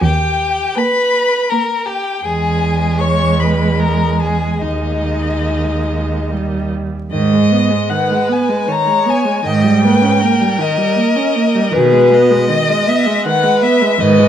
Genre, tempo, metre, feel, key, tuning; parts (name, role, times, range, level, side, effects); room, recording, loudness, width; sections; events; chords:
classical, slow romantic movement for string quartet; 70-81 BPM; 3/4; rubato; G# minor; A4 = 440 Hz
dark violin; melody; 0.0-14.3 s; B4 to C#6; -17 LUFS; left 6 dB
rich violin; second line; 0.0-14.3 s; D#4 to D#5; -19 LUFS; equal
rich cello; bass; 0.0-14.3 s; D#2 to B2; -16 LUFS; right 3 dB
rich viola; accompaniment; 0.8-14.3 s; D#3 to C#4; -19 LUFS; right 3 dB
light reverb; close, detailed microphones, vinyl crackle; -12 LUFS; side -10 dB against mid
0.0-7.1 A section; 7.1-14.3 B section
0.0 D#; 2.3 E; 4.6 D#sus4; 6.3 D#; 7.1 G#m; 9.5 D#7/G#; 11.8 G#m/B